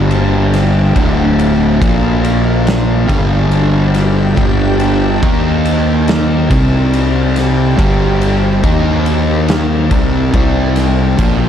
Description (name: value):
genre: stoner and doom metal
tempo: 70 BPM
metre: 4/4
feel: straight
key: unclear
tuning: A4 = 439 Hz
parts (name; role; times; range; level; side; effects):
- organ-like drone; sustained chords; 0.0-11.5 s; Bb3 to G5; -23 LUFS; right 1 dB; ensemble chorus, built-in reverb
- fuzz guitar; riff; 0.0-11.5 s; D2 to Eb4; -13 LUFS; left 1 dB; distortion
- fuzz fingered electric bass; bass; 0.0-11.5 s; D1 to Eb2; -16 LUFS; equal; overdrive
- oversized low-tuned drum kit; drums; 0.1-11.4 s; crash cymbal, kick drum, ride cymbal, snare drum; -17 LUFS; equal; none
room: small room reverb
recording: dark, warm production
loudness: -10 LUFS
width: side -9 dB against mid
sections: 0.0-11.5 A section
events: none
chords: 0.0 G5; 0.9 Dm; 1.8 Bb5; 3.1 G5; 5.2 Eb5; 6.5 C5; 7.8 G5; 8.6 Eb5; 9.9 G5; 10.3 C5